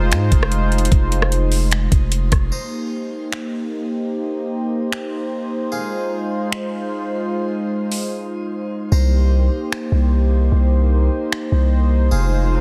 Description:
hip hop, atmospheric cloud-rap; 150 BPM; 4/4; half-time; C minor; A4 = 440 Hz
warm analog pad; sustained chords; 0.0-12.6 s; Ab3 to C5; -25 LUFS; equal; chorus, low-pass filter
long sustained 808-style bass; bass; 0.0-2.5, 8.9-12.6 s; F1 to Ab2; -18 LUFS; equal
harpsichord; texture; 0.0-12.6 s; Ab4 to Eb6; -36 LUFS; equal
smooth R&B drum kit; drums; 0.1-11.4 s; finger snaps, hi-hat, kick drum, rim click; -21 LUFS; equal; soft clipping on snare
riser; sound effects; 12.6 s; -39 LUFS; equal
digital ambience; dense, heavily limited modern master; -19 LUFS; mono
0.0-2.5 A section; 2.5-12.6 B section
break 2.5-8.9; filter sweep on analog synth pad 2.5-12.6
0.0 Fm7; 2.5 Cm7; 5.7 Fm7; 8.9 Cm7
0.12 0.52 | 0.92 1.32 1.72 2.12 | 2.52 2.92 3.32 3.72 | 4.12 4.52 4.92 5.32 | 5.72 6.12 6.52 6.92 | 7.32 7.72 8.12 8.52 | 8.92 9.32 9.72 10.12 | 10.52 10.92 11.32 11.72 | 12.12 12.52

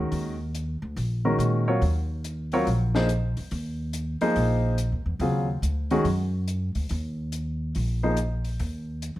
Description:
modal jazz; 141 BPM; 4/4; swing 65% on 8ths; Eb dorian; A4 = 440 Hz
warm grand piano; accompaniment; 0.0-8.2 s; Db3 to Db5; -25 LUFS; equal
upright bass; bass; 0.0-9.2 s; Bb1 to Bb2; -26 LUFS; equal
compact cocktail drum kit; drums; 0.1-9.2 s; hi-hat, snare drum; -39 LUFS; left 3 dB
light reverb; -24 LUFS; side -15 dB against mid
0.0-9.2 A section
0.0 Ebm9
| 0.12 0.54 0.96 1.39 | 1.81 2.24 2.66 3.09 | 3.51 3.93 4.36 4.78 | 5.21 5.63 6.06 6.48 | 6.91 7.33 7.76 8.18 | 8.61 9.03

